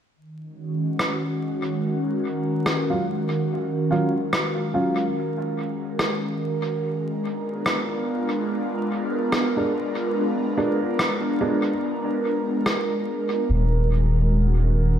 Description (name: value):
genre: ambient dub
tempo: 72 BPM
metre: 4/4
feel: swing 58% on 16ths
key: Eb minor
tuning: A4 = 441 Hz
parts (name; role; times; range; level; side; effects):
- airy breathy pad; sustained chords; 0.3-15.0 s; Eb3 to Bb4; -24 LUFS; equal; chorus, phaser
- electronic rim click; drums; 1.0-12.9 s; none; -27 LUFS; equal; dub echo
- dark upright piano; stabs; 2.9-11.7 s; Gb3 to F4; -27 LUFS; right 1 dB; low-pass filter, dub echo
- soft dub sub bass; bass; 13.5-15.0 s; Eb1; -19 LUFS; equal; none
room: moderate echo chamber reverb, RT60 2.1 s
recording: vinyl crackle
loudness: -21 LUFS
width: side -9 dB against mid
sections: 0.2-13.5 A section; 13.5-15.0 B section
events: none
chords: 0.2 Ebm7; 6.8 Bb7b9; 13.5 Ebm7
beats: | 0.16 0.99 1.83 2.66 | 3.49 4.33 5.16 5.99 | 6.83 7.66 8.49 9.33 | 10.16 10.99 11.83 12.66 | 13.49 14.33